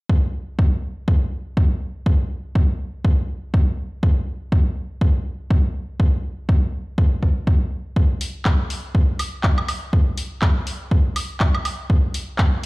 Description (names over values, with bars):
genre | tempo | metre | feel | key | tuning
piano house | 122 BPM | 4/4 | swing 57% on 16ths | none | none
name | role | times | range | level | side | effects
electronic kick drum | drums | 0.1-12.5 s | none | -18 LUFS | equal | overdrive
house drum kit | drums | 8.2-12.7 s | handclaps, hi-hat, woodblock | -26 LUFS | equal | none
room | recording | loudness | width
little or no reverb | played on a big sound system in a bare room, large studio reverb | -18 LUFS | side -23 dB against mid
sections
0.1-12.7 A section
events
none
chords
none